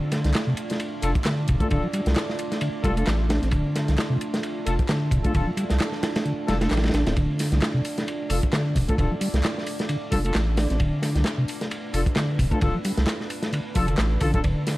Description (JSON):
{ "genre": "breakbeat, breaks", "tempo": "132 BPM", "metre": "4/4", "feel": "swing 56% on 16ths", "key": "D dorian", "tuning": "A4 = 440 Hz", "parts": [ { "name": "deep dark ambient pad", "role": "sustained chords", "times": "0.0-14.8 s", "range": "A3 to D5", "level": "-32 LUFS", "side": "right 1 dB", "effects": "chorus, built-in reverb, vintage 12-bit sampler grit, sidechain pumping" }, { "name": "mellow tonewheel organ", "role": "riff", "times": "0.0-14.8 s", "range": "C3 to D4", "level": "-26 LUFS", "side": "equal", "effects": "chorus vibrato, tape echo" }, { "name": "crunchy breakbeat drum kit", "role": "drums", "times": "0.1-14.8 s", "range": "kick drum, ride cymbal, snare drum", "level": "-26 LUFS", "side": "equal", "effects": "none" }, { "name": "house drum kit", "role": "drums", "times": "0.1-14.8 s", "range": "handclaps, hi-hat", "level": "-35 LUFS", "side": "equal", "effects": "overdrive" }, { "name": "saturated sub bass", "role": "bass", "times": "0.2-14.5 s", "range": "D1 to C2", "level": "-24 LUFS", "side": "equal", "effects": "none" }, { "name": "dark brass ensemble", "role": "stabs", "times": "1.0-14.4 s", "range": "D4 to A4", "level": "-31 LUFS", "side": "left 2 dB", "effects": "tape echo" } ], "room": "studio reverb", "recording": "vinyl crackle", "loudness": "-21 LUFS", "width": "side -18 dB against mid", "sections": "0.0-14.8 A section", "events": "none", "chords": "0.0 Dm" }